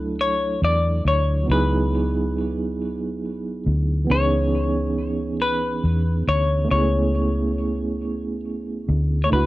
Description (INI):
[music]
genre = slow six-eight R&B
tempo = 46 BPM (dotted quarters)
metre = 6/8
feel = straight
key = unclear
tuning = A4 = 440 Hz
[part]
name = semi-hollow electric guitar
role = melody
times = 0.0-9.5 s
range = B4 to D5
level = -24 LUFS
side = left 2 dB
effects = none
[part]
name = overdriven tine electric piano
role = accompaniment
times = 0.0-9.5 s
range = E3 to A4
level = -25 LUFS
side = right 2 dB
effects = medium tremolo
[part]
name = vintage muted fingered electric bass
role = bass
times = 0.0-9.5 s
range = C#2 to E2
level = -22 LUFS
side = equal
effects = none
[sound]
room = little or no reverb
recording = dry, close 1970s-style studio recording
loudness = -20 LUFS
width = side -17 dB against mid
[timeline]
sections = 0.0-9.5 A section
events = none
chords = 0.0 Dmaj9/C#; 1.5 Emaj7/C#; 4.1 C#m7; 6.7 Amaj9/C#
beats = 0.17 | 1.47 2.77 | 4.08 5.38 | 6.69 7.99 | 9.29